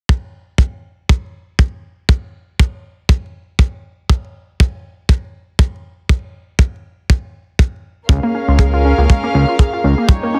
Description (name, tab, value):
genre	nu-disco, nu disco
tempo	120 BPM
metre	4/4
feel	swing 55% on 16ths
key	unclear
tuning	A4 = 441 Hz
part	kick drum	drums	0.1-10.2 s	none	-13 LUFS	equal	none
part	dark chamber string section	sustained chords	8.1-10.4 s	Db4 to F5	-22 LUFS	equal	sidechain pumping
part	unison pluck	arpeggios	8.1-10.4 s	G3 to Ab4	-22 LUFS	equal	sidechain pumping, tape echo
part	fat analog bass	bass	8.1-9.9 s	Db2	-15 LUFS	equal	none
room	small room ambience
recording	heavily compressed radio sound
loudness	-17 LUFS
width	mono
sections	0.1-10.4 A section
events	none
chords	0.1 N.C.; 8.1 Db6